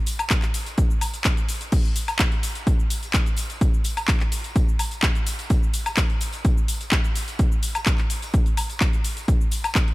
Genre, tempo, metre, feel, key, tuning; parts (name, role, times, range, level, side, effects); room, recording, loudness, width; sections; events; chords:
house; 127 BPM; 4/4; straight
house drum kit; drums; 0.1-9.9 s; crash cymbal, handclaps, hi-hat, shaker, woodblock; -26 LUFS; left 1 dB; small room ambience
tambourine; percussion; 0.1-9.9 s; -38 LUFS; right 1 dB
electronic kick drum; drums; 0.3-9.9 s; -21 LUFS; equal; small room ambience
little or no reverb; -20 LUFS; side -19 dB against mid
0.0-9.9 A section